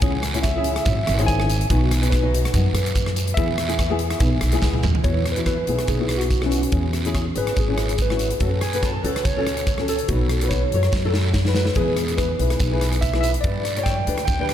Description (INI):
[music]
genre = calypso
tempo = 143 BPM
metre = 4/4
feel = swing 53% on 16ths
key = E major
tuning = A4 = 442 Hz
[part]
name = flamenco guitar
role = accompaniment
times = 0.0-14.5 s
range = B3 to C#5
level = -27 LUFS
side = left 4 dB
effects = ensemble chorus
[part]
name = upright bass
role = bass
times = 0.0-14.5 s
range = G#1 to G2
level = -22 LUFS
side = equal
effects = none
[part]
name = big rock drum kit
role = drums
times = 0.0-14.5 s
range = hi-hat, kick drum, rim click, snare drum, toms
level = -24 LUFS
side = equal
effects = none
[part]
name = guiro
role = percussion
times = 0.0-14.5 s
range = none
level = -34 LUFS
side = right 5 dB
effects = none
[part]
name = tine electric piano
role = melody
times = 0.4-14.5 s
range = C#4 to G#5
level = -26 LUFS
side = equal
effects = medium stereo tremolo, tape echo
[part]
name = breathy alto saxophone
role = second line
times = 8.4-9.8 s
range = F#4 to C#5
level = -32 LUFS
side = right 4 dB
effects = none
[sound]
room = light reverb, small room ambience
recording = none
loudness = -18 LUFS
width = side -10 dB against mid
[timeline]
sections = 0.0-5.0 A section; 5.0-14.5 B section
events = drum fill 4.6-5.0, 10.9-11.8; tine electric piano solo 5.0-14.5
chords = 0.0 C#m; 1.7 B; 3.4 E; 5.0 Esus2; 6.7 C#m7; 8.4 F#m; 10.1 B; 11.8 E; 13.4 G